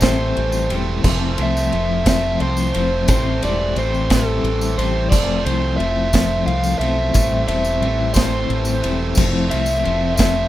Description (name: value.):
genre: indie rock.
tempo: 59 BPM (dotted quarters).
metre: 6/8.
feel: straight.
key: A minor.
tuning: A4 = 440 Hz.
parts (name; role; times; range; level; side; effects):
overdriven semi-hollow guitar; melody; 0.0-10.5 s; A4 to F5; -22 LUFS; equal; slapback echo.
combo organ; sustained chords; 0.0-10.5 s; F3 to C5; -29 LUFS; right 1 dB; none.
high-gain distorted guitar; riff; 0.0-10.5 s; E3 to C4; -27 LUFS; right 6 dB; distortion, wide subtle chorus, slapback echo.
twelve-string electric guitar; riff; 0.0-10.5 s; A2 to E4; -24 LUFS; left 4 dB; tremolo.
fingered electric bass; bass; 0.0-10.5 s; E1 to C2; -22 LUFS; equal; none.
loose indie drum kit; drums; 0.0-10.4 s; crash cymbal, kick drum, ride cymbal, snare drum; -21 LUFS; equal; none.
tambourine; percussion; 0.0-10.3 s; none; -30 LUFS; left 3 dB; none.
room: small room ambience.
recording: rough home demo mix.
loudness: -16 LUFS.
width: side -14 dB against mid.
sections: 0.0-10.5 A section.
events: none.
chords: 0.0 Am7; 1.0 Fmaj7; 3.1 Am7; 5.1 Fmaj7; 7.2 Am7; 9.2 Fmaj7.